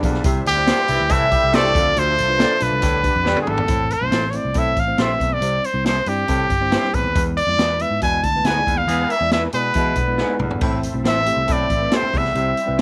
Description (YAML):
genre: uptempo 1960s-style soul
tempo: 139 BPM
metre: 4/4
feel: straight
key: unclear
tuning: A4 = 442 Hz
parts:
  - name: mellow tine electric piano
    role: accompaniment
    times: 0.0-12.8 s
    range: G3 to F5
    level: -30 LUFS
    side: equal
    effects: none
  - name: overdriven tonewheel organ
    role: sustained chords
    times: 0.0-3.7, 10.6-12.8 s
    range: F3 to E4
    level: -34 LUFS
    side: equal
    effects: none
  - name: electric guitar through a small old amp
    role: riff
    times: 0.0-0.2, 9.5-10.6 s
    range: D3 to G#4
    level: -31 LUFS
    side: equal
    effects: none
  - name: warm baritone saxophone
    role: riff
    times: 0.0-12.5 s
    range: D2 to C3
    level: -31 LUFS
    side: equal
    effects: none
  - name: vintage muted picked electric bass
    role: bass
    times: 0.0-12.8 s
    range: G1 to E3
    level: -28 LUFS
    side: equal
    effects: none
  - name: swinging big-band drum kit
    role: drums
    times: 0.0-12.8 s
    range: hi-hat, kick drum, snare drum, splash cymbal, toms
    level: -25 LUFS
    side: equal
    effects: none
  - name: bright trumpet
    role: melody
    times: 0.5-12.8 s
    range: G4 to A5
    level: -22 LUFS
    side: equal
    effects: none
  - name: warm horn section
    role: second line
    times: 0.5-1.8, 8.9-9.2 s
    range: D3 to A4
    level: -29 LUFS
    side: equal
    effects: tape echo
  - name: electric guitar through a small old amp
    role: stabs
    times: 0.7-12.8 s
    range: E4 to D5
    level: -30 LUFS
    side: equal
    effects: lush chorus
room: light reverb, small room ambience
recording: none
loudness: -19 LUFS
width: mono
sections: 0.0-3.7 A section; 3.7-12.8 B section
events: tine electric piano fill 0.0; drum fill 3.3-3.7, 10.2-10.6; band accent 8.9-10.6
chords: 0.2 C; 1.7 Dm; 2.8 G/D; 3.7 Am; 5.4 C; 7.2 E; 10.6 Am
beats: | 0.24 0.67 1.10 1.53 | 1.96 2.39 2.83 3.26 | 3.69 4.12 4.55 4.99 | 5.42 5.85 6.29 6.72 | 7.15 7.58 8.02 8.45 | 8.88 9.32 9.75 10.18 | 10.62 11.05 11.48 11.92 | 12.35 12.78